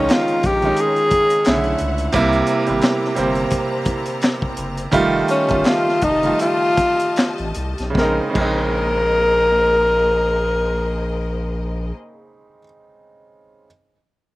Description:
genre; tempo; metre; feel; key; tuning
R&B, neo-soul; 75-88 BPM; 4/4; swing 58% on 16ths; Bb dorian; A4 = 440 Hz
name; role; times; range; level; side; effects
mellow tenor saxophone; melody; 0.0-11.9 s; Db4 to Bb4; -17 LUFS; left 1 dB; none
clear baby grand piano; accompaniment; 0.0-13.7 s; C3 to F4; -21 LUFS; right 2 dB; slapback echo
rich studio string section; sustained chords; 0.0-11.9 s; Bb3 to Bb5; -29 LUFS; left 2 dB; none
round analog bass; bass; 0.0-11.9 s; F1 to C#2; -25 LUFS; equal; none
crunchy breakbeat drum kit; drums; 0.1-8.6 s; crash cymbal, handclaps, hi-hat, kick drum, snare drum; -21 LUFS; equal; none
room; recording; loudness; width
little or no reverb; recorded outdoors, with no room sound; -16 LUFS; side -18 dB against mid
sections
0.0-7.9 A section; 7.9-11.2 B section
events
slowing down 2.1-7.9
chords
0.0 Eb9sus4; 1.5 Bm11; 2.1 C7; 4.9 F9; 7.9 Bbm11

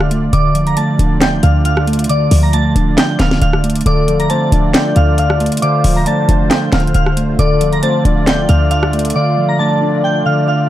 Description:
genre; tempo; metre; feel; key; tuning
hip hop, trap; 136 BPM; 4/4; half-time; D minor; A4 = 441 Hz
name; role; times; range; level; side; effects
soft synth bell; melody; 0.0-10.7 s; D5 to Bb6; -19 LUFS; right 1 dB; chorus, phaser, tape echo
mellow electric guitar; accompaniment; 0.0-10.7 s; D3 to D5; -16 LUFS; right 1 dB; none
musette accordion; sustained chords; 0.0-10.7 s; D3 to D5; -23 LUFS; right 2 dB; stereo widening
short 808-style bass; bass; 0.0-9.1 s; D1 to D2; -15 LUFS; equal; none
trap drum kit; drums; 0.0-9.1 s; handclaps, hi-hat, rim click, snare drum; -18 LUFS; equal; none
soft octave-layered synth lead; second line; 3.9-10.7 s; A4 to F5; -20 LUFS; left 6 dB; chorus
room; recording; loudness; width
little or no reverb; dark, warm production; -11 LUFS; side -13 dB against mid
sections
0.0-10.7 A section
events
drums muted 9.2-10.7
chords
0.0 Dm

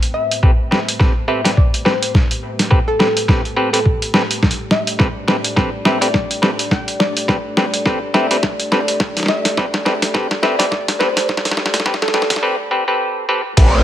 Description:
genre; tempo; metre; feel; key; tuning
glitch hop; 105 BPM; 4/4; swing 57% on 16ths; A minor; A4 = 436 Hz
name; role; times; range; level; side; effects
dark analog pad; sustained chords; 0.0-13.8 s; A3 to D5; -26 LUFS; left 1 dB; chorus, vintage 12-bit sampler grit, sidechain pumping
boom bap sampler-style drum kit; drums; 0.0-13.7 s; crash cymbal, hi-hat, snare drum; -18 LUFS; equal; none
woody wave-folded pluck; melody; 0.1-12.3 s; A4 to G5; -23 LUFS; left 1 dB; wide subtle chorus, dub echo
bright clav; stabs; 0.4-13.8 s; C4 to B4; -20 LUFS; equal; vintage 12-bit sampler grit, sidechain pumping, dub echo
electronic kick drum; drums; 0.4-13.7 s; none; -15 LUFS; equal; none
growl bass; bass; 13.6-13.8 s; A1; -13 LUFS; equal; chorus, overdrive
room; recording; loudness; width
light reverb; high-pass filter; -14 LUFS; side -11 dB against mid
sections
0.0-13.6 A section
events
build-up 0.0-13.6; drum fill 0.0-12.4; filter sweep on analog synth pad 0.0-13.6; filter sweep 0.0-13.6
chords
0.0 Am9

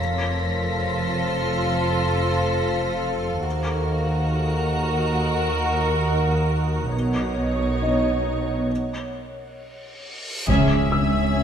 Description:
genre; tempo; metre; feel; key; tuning
cinematic, suspense film score; 69 BPM; 4/4; straight; unclear; A4 = 440 Hz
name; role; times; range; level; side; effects
muted studio violin section; second line; 0.0-11.4 s; D#4 to C#5; -26 LUFS; equal; none
icy glass pad; sustained chords; 0.0-11.4 s; A4 to G#5; -29 LUFS; equal; chorus, built-in reverb
muted studio cello section; bass; 0.0-11.4 s; C#2 to B2; -27 LUFS; right 2 dB; none
muted studio double bass section; bass; 0.0-11.4 s; F1 to Eb2; -26 LUFS; right 1 dB; none
muted studio violin section; texture; 0.0-3.0, 10.5-11.4 s; E6 to Cb7; -31 LUFS; left 5 dB; none
reverse cymbal and impact; sound effects; 10.0-11.4 s; none; -29 LUFS; equal; none
felt-muted upright piano; texture; 7.8-11.4 s; D#5 to E6; -30 LUFS; left 1 dB; none
muted studio violin section; melody; 10.5-11.4 s; E5; -27 LUFS; left 5 dB; none
muted studio viola section; accompaniment; 10.5-11.4 s; C#4; -26 LUFS; right 5 dB; none
folk marimba with medium mallets; riff; 10.5-11.4 s; C#3 to C#4; -25 LUFS; left 6 dB; none
solo taiko drums; drums; 10.5-11.4 s; none; -29 LUFS; left 1 dB; none
timpani; percussion; 10.5-11.4 s; none; barely audible; none; none
room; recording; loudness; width
moderate scoring stage reverb, RT60 1.8 s; none; -20 LUFS; side -8 dB against mid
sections
0.0-10.5 A section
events
break 8.7-10.5; reverse cymbal 10.0-10.5; band accent 10.5-11.4; impact 10.5-11.4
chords
0.0 F; 3.5 Ebm; 6.9 Badd9; 8.7 N.C.; 10.5 C#m

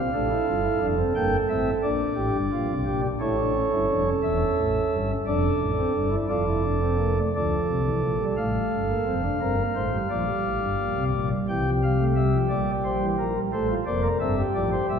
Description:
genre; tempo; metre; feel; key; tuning
classical, baroque-style 4-part fugue for pipe organ; 58 BPM (dotted quarters); 12/8; straight; G minor; A4 = 439 Hz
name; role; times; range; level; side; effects
pipe organ, flutes; solo; 0.0-15.0 s; E1 to G5; -22 LUFS; equal; none
room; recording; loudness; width
wet church reverb, RT60 2.5 s; minimal, uncompressed stereo recording; -22 LUFS; side -7 dB against mid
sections
0.0-7.3 A section; 7.3-15.0 B section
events
none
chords
0.0 Dm; 1.1 Gm; 3.2 A; 5.3 Dm/F; 9.4 Gm; 11.5 C; 13.5 F

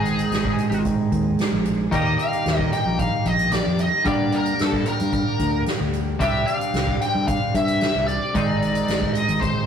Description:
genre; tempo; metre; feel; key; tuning
psychedelic rock; 112 BPM; 4/4; straight; unclear; A4 = 441 Hz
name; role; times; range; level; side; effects
bluesy overdriven lead guitar; melody; 0.0-9.7 s; Ab4 to G5; -24 LUFS; left 2 dB; wah, distortion
combo organ; sustained chords; 0.0-9.7 s; G3 to Ab4; -34 LUFS; right 4 dB; none
twelve-string electric guitar; riff; 0.0-9.7 s; G2 to Ab4; -25 LUFS; right 1 dB; none
fingered electric bass; bass; 0.0-9.5 s; Ab1 to G2; -24 LUFS; left 1 dB; none
soft-mallet drum kit; drums; 0.1-9.5 s; hi-hat, kick drum, snare drum; -26 LUFS; right 1 dB; none
room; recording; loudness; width
light reverb; rough rehearsal-room recording, warm saturation; -19 LUFS; side -8 dB against mid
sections
0.0-9.7 A section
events
none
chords
0.0 Ab; 1.9 Eb; 4.1 Gm; 6.2 Csus2; 8.3 Ab

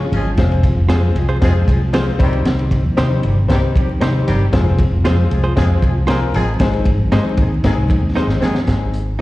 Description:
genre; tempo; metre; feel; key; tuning
uptempo 1960s-style soul; 116 BPM; 4/4; straight; unclear; A4 = 440 Hz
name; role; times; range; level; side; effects
clear baby grand piano; accompaniment; 0.0-8.9 s; G3 to Eb5; -23 LUFS; left 5 dB; slapback echo
mellow tonewheel organ; sustained chords; 0.0-8.7 s; Eb3 to F4; -25 LUFS; equal; slow rotary speaker, chorus vibrato
vintage muted fingered electric bass; bass; 0.0-9.2 s; F1 to C3; -16 LUFS; equal; none
dark horn section; second line; 0.1-8.6 s; Eb3 to Ab4; -25 LUFS; equal; slapback echo
crunchy breakbeat drum kit; drums; 0.1-9.1 s; hi-hat, kick drum, ride cymbal, snare drum; -18 LUFS; equal; none
congas; percussion; 0.1-8.5 s; none; -28 LUFS; equal; none
direct-recorded clean electric guitar; stabs; 0.9-9.2 s; Eb4 to C5; -24 LUFS; right 4 dB; slapback echo
room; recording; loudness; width
light reverb; live gig heard through the venue's PA, recital hall reverb, vinyl crackle; -13 LUFS; side -18 dB against mid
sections
0.0-8.7 A section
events
drum fill 8.2-8.7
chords
0.4 Fm; 2.2 Cm; 4.5 Fm; 6.6 Ab

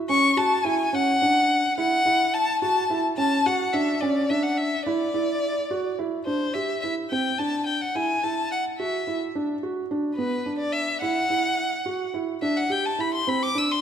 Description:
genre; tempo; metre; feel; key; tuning
contemporary instrumental, contemporary; 214 BPM (eighths); 11/8; straight; unclear; A4 = 440 Hz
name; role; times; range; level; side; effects
rich violin; melody; 0.1-13.8 s; B4 to E6; -24 LUFS; left 2 dB; none
felt-muted upright piano; arpeggios; 0.1-13.8 s; B3 to G4; -26 LUFS; right 2 dB; none
room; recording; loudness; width
moderate concert hall reverb, RT60 2.1 s; none; -22 LUFS; side -9 dB against mid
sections
0.0-6.3 A section; 6.3-13.8 B section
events
none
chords
0.1 Dmaj9/C#; 6.3 Cadd9; 7.9 Eadd9; 9.3 Bm (rootless); 12.4 Cadd9

